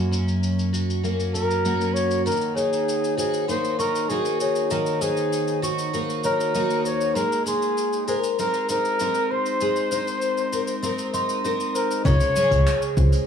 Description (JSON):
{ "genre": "folktronica", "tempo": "98 BPM", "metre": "4/4", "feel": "straight", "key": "unclear", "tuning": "A4 = 438 Hz", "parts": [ { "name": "picked twelve-string acoustic guitar", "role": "arpeggios", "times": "0.0-13.3 s", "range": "Gb2 to Bb4", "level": "-25 LUFS", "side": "right 1 dB", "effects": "wide subtle chorus, low-pass filter" }, { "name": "vintage brush drum kit", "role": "drums", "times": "0.1-13.2 s", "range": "cabasa, finger snaps, hi-hat", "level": "-34 LUFS", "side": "left 2 dB", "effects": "low-pass filter on hats, low-pass filter on perc, low-pass filter on snare, low-pass filter on room" }, { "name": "breathy flugelhorn", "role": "melody", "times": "1.3-12.9 s", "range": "Ab4 to Db5", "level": "-24 LUFS", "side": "left 1 dB", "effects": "tape echo" }, { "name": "large celesta", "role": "second line", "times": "2.6-13.3 s", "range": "C5 to Db6", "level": "-28 LUFS", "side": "left 2 dB", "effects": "tape echo" }, { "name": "upright bass", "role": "bass", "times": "12.1-13.1 s", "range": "Db2", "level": "-19 LUFS", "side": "equal", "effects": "tube saturation" }, { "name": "electronic kick drum", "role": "drums", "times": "12.1-13.1 s", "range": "none", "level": "-25 LUFS", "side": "equal", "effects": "none" } ], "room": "light reverb", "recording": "studio reverb", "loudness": "-20 LUFS", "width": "side -7 dB against mid", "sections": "0.0-12.1 A section; 12.1-13.3 B section", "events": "filter sweep on twelve-string acoustic guitar 0.0-12.1", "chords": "0.0 Gb; 2.3 Ebm; 7.2 Abadd9; 12.1 Db5" }